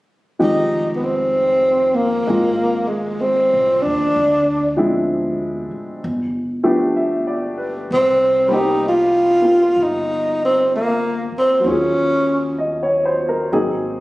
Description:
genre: jazz ballad.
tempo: 64 BPM.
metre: 4/4.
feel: swing 66% on 8ths.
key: F minor.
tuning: A4 = 440 Hz.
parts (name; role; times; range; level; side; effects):
breathy tenor saxophone; melody; 0.4-12.6 s; Ab3 to F4; -16 LUFS; equal; none.
warm upright piano; accompaniment; 0.4-14.0 s; Eb3 to E5; -20 LUFS; equal; none.
upright bass; bass; 0.4-14.0 s; F1 to Eb2; -31 LUFS; equal; none.
room: moderate large studio reverb, RT60 1.4 s.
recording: recorded on a phone in the room, studio reverb, compression.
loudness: -15 LUFS.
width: side -18 dB against mid.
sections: 0.4-14.0 A section.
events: none.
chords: 0.4 Fm9; 4.2 Dm7b5; 6.0 G7; 7.9 Cm7; 11.6 Ebm11.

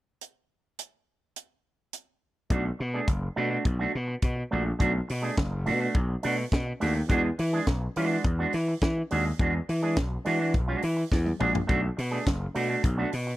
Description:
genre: disco.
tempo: 104 BPM.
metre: 4/4.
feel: straight.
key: B dorian.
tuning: A4 = 440 Hz.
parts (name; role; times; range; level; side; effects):
tight funk drum kit; drums; 0.2-13.3 s; hi-hat, kick drum, snare drum, toms; -29 LUFS; equal; none.
electric guitar with an envelope filter; accompaniment; 2.5-13.3 s; G#3 to G#4; -29 LUFS; right 3 dB; none.
gritty slap bass; bass; 2.5-13.3 s; F#1 to E3; -28 LUFS; equal; overdrive.
room: small room ambience.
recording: dry, close 1970s-style studio recording.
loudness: -25 LUFS.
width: side -16 dB against mid.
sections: 0.2-2.5 A section; 2.5-13.4 B section.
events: drum fill 11.1-11.7.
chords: 0.2 N.C.; 2.5 Bm7; 7.1 E9; 11.7 Bm7.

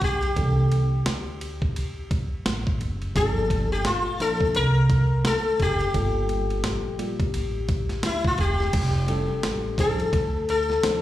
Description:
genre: hip hop, jazz-hop.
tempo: 86 BPM.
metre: 4/4.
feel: swing 60% on 16ths.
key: G dorian.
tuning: A4 = 440 Hz.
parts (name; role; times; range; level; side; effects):
sitar; melody; 0.0-11.0 s; E4 to Bb4; -26 LUFS; left 3 dB; slapback echo.
upright bass; bass; 0.0-11.0 s; E1 to E2; -26 LUFS; right 1 dB; none.
boom bap sampler-style drum kit; drums; 0.0-11.0 s; crash cymbal, hi-hat, kick drum, ride cymbal, snare drum; -28 LUFS; equal; none.
mellow tine electric piano; accompaniment; 0.4-11.0 s; E3 to C5; -32 LUFS; equal; medium stereo tremolo, slapback echo.
room: digital ambience.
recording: live gig heard through the venue's PA, club reverb.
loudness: -21 LUFS.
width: side -14 dB against mid.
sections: 0.0-8.7 A section; 8.7-11.0 B section.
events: none.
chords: 0.4 C13; 3.2 Gm7; 5.9 Gm9; 8.7 Fadd9; 9.4 A7; 10.1 Dm9.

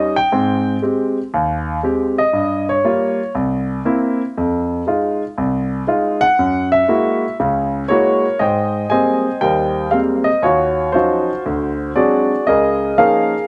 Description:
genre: solo jazz.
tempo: 118 BPM.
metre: 4/4.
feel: swing 66% on 8ths.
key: Ab major.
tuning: A4 = 438 Hz.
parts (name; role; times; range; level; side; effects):
warm concert grand piano; solo; 0.0-13.5 s; C2 to Ab5; -17 LUFS; equal; slapback echo.
room: light reverb.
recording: recorded outdoors, with no room sound, nothing above 11.0 kHz.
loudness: -17 LUFS.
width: mono.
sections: 0.0-8.4 A section; 8.4-13.5 B section.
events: grand piano solo 0.0-8.4.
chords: 0.3 Abmaj7; 2.3 Gm7b5; 3.3 C7; 4.4 Fm7; 6.4 Gb9; 8.4 Abmaj9; 10.4 Ebm9; 11.4 D7#11; 12.5 Db69.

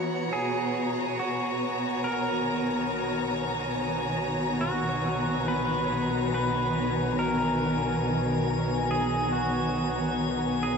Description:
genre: ambient.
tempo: 70 BPM.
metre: 4/4.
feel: straight.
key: B major.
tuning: A4 = 440 Hz.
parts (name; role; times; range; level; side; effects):
warm studio string section; sustained chords; 0.0-10.8 s; B2 to A#5; -28 LUFS; equal; none.
organ-like drone; drone; 0.0-10.8 s; B3 to F#4; -34 LUFS; left 2 dB; ensemble chorus, built-in reverb.
drifting glass-harmonics texture; texture; 0.0-10.8 s; F#5 to G#5; -35 LUFS; left 2 dB; chorus, built-in reverb.
pedal steel guitar; melody; 0.3-10.8 s; F#4 to B4; -31 LUFS; equal; ping-pong delay.
round analog bass; bass; 0.3-10.8 s; B1; -44 LUFS; equal; none.
room: wet huge ambient reverb, RT60 7.7 s.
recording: none.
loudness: -25 LUFS.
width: side -6 dB against mid.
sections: 0.3-10.8 A section.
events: fade-in on analog synth bass 0.3-10.8.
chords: 0.3 Bmaj7.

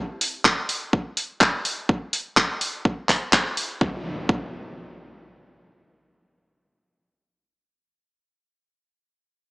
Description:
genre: progressive house.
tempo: 125 BPM.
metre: 4/4.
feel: straight.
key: none.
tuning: none.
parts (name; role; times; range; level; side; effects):
house drum kit; drums; 0.2-3.7 s; handclaps, hi-hat; -20 LUFS; equal; sidechain pumping on hats.
electronic kick drum; drums; 0.5-4.4 s; none; -23 LUFS; equal; none.
impact; sound effects; 3.8-8.4 s; none; -35 LUFS; equal; none.
room: moderate lush hall reverb, RT60 1.5 s.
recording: small speaker sound.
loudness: -21 LUFS.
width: side -25 dB against mid.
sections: 0.0-3.8 A section; 3.8-7.7 B section.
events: none.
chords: none.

